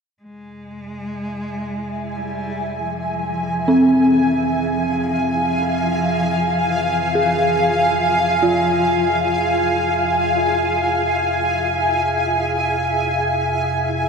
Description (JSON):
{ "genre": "dark ambient drone", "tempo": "46 BPM", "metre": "4/4", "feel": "straight", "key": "F harmonic minor", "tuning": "A4 = 440 Hz", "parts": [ { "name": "rich cello", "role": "melody", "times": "0.2-10.2 s", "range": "E3 to Ab3", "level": "-27 LUFS", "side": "equal", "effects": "ping-pong delay" }, { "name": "granular cloud pad", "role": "sustained chords", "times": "1.3-14.1 s", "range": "E5 to Ab5", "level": "-19 LUFS", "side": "equal", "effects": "built-in reverb" }, { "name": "deep rumbling drone", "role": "drone", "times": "0.2-14.1 s", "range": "F2 to C3", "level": "-31 LUFS", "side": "equal", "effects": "built-in reverb, wide subtle chorus" }, { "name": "dark detuned synth bell", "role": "arpeggios", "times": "3.7-14.1 s", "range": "C4 to Ab4", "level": "-20 LUFS", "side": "equal", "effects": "chorus, ping-pong delay" } ], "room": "wet cathedral reverb, RT60 6.1 s", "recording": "none", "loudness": "-16 LUFS", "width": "side -5 dB against mid", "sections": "0.2-14.1 A section", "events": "fade-in on synth drone 0.2-14.1; fade-in on cello 0.2-14.1", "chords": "0.2 Fm" }